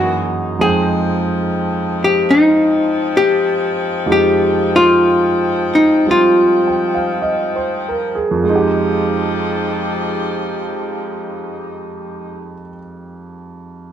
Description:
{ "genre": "jazz ballad", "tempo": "46-73 BPM", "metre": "4/4", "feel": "swing 68% on 8ths", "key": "F minor", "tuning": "A4 = 442 Hz", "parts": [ { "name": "archtop guitar, miked and amplified", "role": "melody", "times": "0.0-7.2 s", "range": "Eb4 to Ab4", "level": "-13 LUFS", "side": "left 1 dB", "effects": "plate reverb" }, { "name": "warm grand piano", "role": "accompaniment", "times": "0.0-13.9 s", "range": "F2 to G5", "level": "-19 LUFS", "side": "right 3 dB", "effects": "none" }, { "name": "mellow saxophone section", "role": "sustained chords", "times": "0.0-12.6 s", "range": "Fb3 to G5", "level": "-22 LUFS", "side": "left 3 dB", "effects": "none" } ], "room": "moderate studio reverb, RT60 0.7 s", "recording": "none", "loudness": "-13 LUFS", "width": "side -9 dB against mid", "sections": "0.0-8.4 A section; 8.4-13.6 B section", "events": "slowing down 0.6-8.4", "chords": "0.0 Gb13; 0.6 Fm9" }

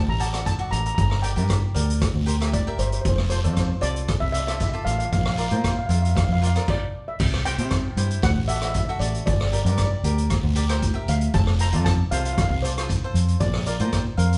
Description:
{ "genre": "calypso", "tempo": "116 BPM", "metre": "4/4", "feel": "straight", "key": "F major", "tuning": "A4 = 441 Hz", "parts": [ { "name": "steel pan", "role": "melody", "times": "0.0-14.4 s", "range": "C5 to Bb5", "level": "-32 LUFS", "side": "equal", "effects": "none" }, { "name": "fingered electric bass", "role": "bass", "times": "0.0-14.4 s", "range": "F1 to C3", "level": "-25 LUFS", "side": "equal", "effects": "none" }, { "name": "cavaquinho", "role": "accompaniment", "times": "0.2-14.4 s", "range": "E4 to F5", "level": "-35 LUFS", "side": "equal", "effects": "none" }, { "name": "street-band drum kit", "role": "drums", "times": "0.2-14.4 s", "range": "crash cymbal, hi-hat, kick drum, rim click", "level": "-28 LUFS", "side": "equal", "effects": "none" }, { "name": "guiro", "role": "percussion", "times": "0.5-14.1 s", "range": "none", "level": "-43 LUFS", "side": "equal", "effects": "none" } ], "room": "wet studio reverb, RT60 1.0 s", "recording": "band playing live in one room, nothing above 10.8 kHz", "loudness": "-23 LUFS", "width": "mono", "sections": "0.0-7.2 A section; 7.2-14.4 A section", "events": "stop 6.7-7.2", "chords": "0.0 D; 1.0 Gm; 3.0 F; 5.1 Bb; 7.2 C; 8.2 D; 9.3 Gm; 11.3 F; 13.4 Bb" }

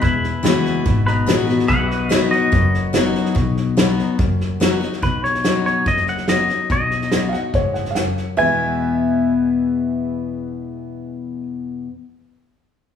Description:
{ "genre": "honky-tonk and classic country", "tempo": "143 BPM", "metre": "4/4", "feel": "straight", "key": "E major", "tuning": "A4 = 440 Hz", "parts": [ { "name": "twangy electric guitar", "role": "melody", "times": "0.0-11.4 s", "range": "D#4 to G#5", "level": "-22 LUFS", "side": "left 1 dB", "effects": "none" }, { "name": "picked steel-string acoustic guitar", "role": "accompaniment", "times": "0.0-11.9 s", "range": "E2 to F#4", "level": "-20 LUFS", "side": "left 4 dB", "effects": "none" }, { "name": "pedal steel guitar", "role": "sustained chords", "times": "0.0-5.0 s", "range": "F#4 to F#5", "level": "-31 LUFS", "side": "equal", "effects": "none" }, { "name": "upright bass", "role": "bass", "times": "0.0-11.4 s", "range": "E1 to E2", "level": "-25 LUFS", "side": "left 1 dB", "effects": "none" }, { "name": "natural country drum kit", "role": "drums", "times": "0.0-8.2 s", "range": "hi-hat, kick drum, snare drum", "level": "-21 LUFS", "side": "equal", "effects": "none" }, { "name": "clear upright piano", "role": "second line", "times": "7.3-11.4 s", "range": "B4 to F#5", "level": "-24 LUFS", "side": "right 3 dB", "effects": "none" } ], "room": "wet large studio reverb, RT60 1.1 s", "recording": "band playing live in one room, small room reverb", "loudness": "-16 LUFS", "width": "side -8 dB against mid", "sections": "0.0-5.0 A section; 5.0-8.4 B section; 8.4-11.7 C section", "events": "none", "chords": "0.0 Eadd9; 1.7 B; 8.4 E" }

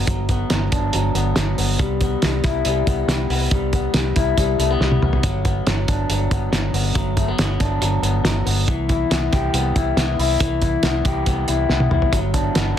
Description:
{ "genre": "jangly indie pop", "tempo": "139 BPM", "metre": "4/4", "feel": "straight", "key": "G major", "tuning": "A4 = 440 Hz", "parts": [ { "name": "electric guitar through a small old amp", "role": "arpeggios", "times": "0.0-12.8 s", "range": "E3 to G4", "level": "-22 LUFS", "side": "left 3 dB", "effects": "digital delay" }, { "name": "vintage muted fingered electric bass", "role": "bass", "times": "0.0-12.7 s", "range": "G1 to C2", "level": "-22 LUFS", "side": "equal", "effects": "none" }, { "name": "cloth-damped thuddy drum kit", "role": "drums", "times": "0.1-12.7 s", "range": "hi-hat, kick drum, snare drum, toms", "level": "-21 LUFS", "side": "equal", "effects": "none" } ], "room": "light reverb", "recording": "dense, heavily limited modern master", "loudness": "-17 LUFS", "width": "side -10 dB against mid", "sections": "0.0-12.8 A section", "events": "drum fill 4.8-5.2, 11.7-12.1", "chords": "0.0 Gmaj7; 1.8 Cmaj7; 5.2 Gmaj7; 8.7 Cmaj7; 12.1 Gmaj7" }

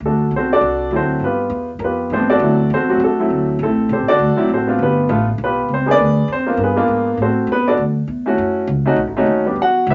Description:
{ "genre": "jazz piano trio", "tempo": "201 BPM", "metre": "4/4", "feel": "swing 60% on 8ths", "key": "D major", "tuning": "A4 = 440 Hz", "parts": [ { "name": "upright bass", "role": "bass", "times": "0.0-9.9 s", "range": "F#1 to A2", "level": "-23 LUFS", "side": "equal", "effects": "none" }, { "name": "warm baby grand piano", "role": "melody", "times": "0.1-9.9 s", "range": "F3 to F#5", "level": "-18 LUFS", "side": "equal", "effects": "none" } ], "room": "wet small room reverb, RT60 0.5 s", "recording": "nothing above 7.7 kHz", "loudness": "-17 LUFS", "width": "mono", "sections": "0.0-9.9 A section", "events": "grand piano solo 0.0-9.9", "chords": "0.0 D7; 1.2 G7; 2.4 D7; 3.6 Am7; 4.2 D7; 4.8 G7; 6.0 G#dim7; 7.2 D7; 8.4 F#m7; 9.0 B7" }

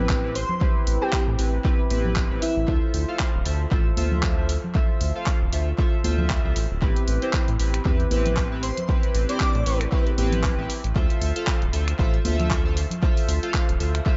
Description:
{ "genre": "deep house", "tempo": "116 BPM", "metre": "4/4", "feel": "swing 56% on 16ths", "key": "A minor", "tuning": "A4 = 438 Hz", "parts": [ { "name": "chorused polysynth", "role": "stabs", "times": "0.0-14.2 s", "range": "C4 to F5", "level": "-31 LUFS", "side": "equal", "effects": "cassette tape, tape echo" }, { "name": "round analog bass", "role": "bass", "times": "0.0-14.0 s", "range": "D1 to A2", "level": "-27 LUFS", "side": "equal", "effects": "none" }, { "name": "deep house drum kit", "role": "drums", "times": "0.1-14.0 s", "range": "finger snaps, handclaps, hi-hat", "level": "-34 LUFS", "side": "equal", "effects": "tape echo" }, { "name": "electronic kick drum", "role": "drums", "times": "0.1-14.2 s", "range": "none", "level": "-26 LUFS", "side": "equal", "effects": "none" }, { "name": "airy dreamy lead", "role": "melody", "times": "0.4-2.7, 8.6-9.8 s", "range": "E4 to D5", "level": "-32 LUFS", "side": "equal", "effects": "chorus, tape echo" }, { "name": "congas", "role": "percussion", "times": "0.5-13.0 s", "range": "none", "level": "-34 LUFS", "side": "equal", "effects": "none" } ], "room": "light reverb", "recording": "echo-heavy mix, nothing above 7.7 kHz", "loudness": "-23 LUFS", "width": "mono", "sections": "0.0-14.2 A section", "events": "none", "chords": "0.0 Am9; 2.7 Dm9; 6.8 Am9; 11.0 Dm9" }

